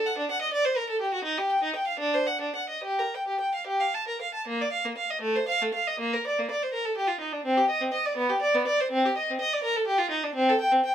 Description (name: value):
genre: classical, baroque-style suite movement for unaccompanied violin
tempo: 68-85 BPM (dotted quarters)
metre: 6/8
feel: rubato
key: G minor, Bb major from 4.5 s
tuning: A4 = 440 Hz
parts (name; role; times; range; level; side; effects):
- clear violin; solo; 0.0-10.9 s; A3 to A5; -24 LUFS; equal; none
room: light reverb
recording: close, detailed microphones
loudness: -24 LUFS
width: side -10 dB against mid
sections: 0.0-4.5 A section; 4.5-10.9 A section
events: none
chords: none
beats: 0.52 | 1.25 2.00 | 2.84 3.66 | 4.47 5.22 | 5.99 6.73 | 7.45 8.17 | 8.92 9.64 | 10.35